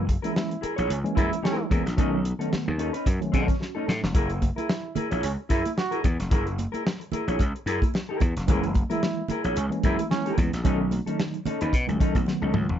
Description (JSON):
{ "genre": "funk", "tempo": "111 BPM", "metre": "4/4", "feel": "swing 56% on 16ths", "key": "F# mixolydian", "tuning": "A4 = 440 Hz", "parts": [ { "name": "mellow tine electric piano", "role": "stabs", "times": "0.0-4.1, 8.5-12.8 s", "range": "D#3 to F#4", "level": "-29 LUFS", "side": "right 2 dB", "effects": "fast stereo tremolo" }, { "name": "gritty slap bass", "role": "bass", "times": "0.0-12.8 s", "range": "E#1 to B2", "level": "-28 LUFS", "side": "equal", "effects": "overdrive" }, { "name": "mellow electric guitar", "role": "accompaniment", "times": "0.1-12.7 s", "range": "C#4 to C#5", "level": "-31 LUFS", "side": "left 2 dB", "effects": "none" }, { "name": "warm soul drum kit", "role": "drums", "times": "0.1-12.8 s", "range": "hi-hat, kick drum, snare drum, toms", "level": "-25 LUFS", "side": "equal", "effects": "none" }, { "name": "clear trombone", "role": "second line", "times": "0.2-10.3 s", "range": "C#4 to F#4", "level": "-31 LUFS", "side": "right 5 dB", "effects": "none" }, { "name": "congas", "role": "percussion", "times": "4.1-12.7 s", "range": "none", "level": "-33 LUFS", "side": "right 6 dB", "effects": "none" } ], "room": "light reverb", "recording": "dark, warm production, nothing above 7.8 kHz", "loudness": "-23 LUFS", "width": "side -10 dB against mid", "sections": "0.0-12.8 A section", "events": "drum fill 3.6-4.1, 12.3-12.8", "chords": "0.0 F#9; 2.0 B9; 4.1 F#9; 10.6 B9", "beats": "0.36 0.90 1.44 | 1.98 2.52 3.06 3.60 | 4.15 4.69 5.23 5.77 | 6.31 6.85 7.40 7.94 | 8.48 9.02 9.56 10.10 | 10.65 11.19 11.73 12.27" }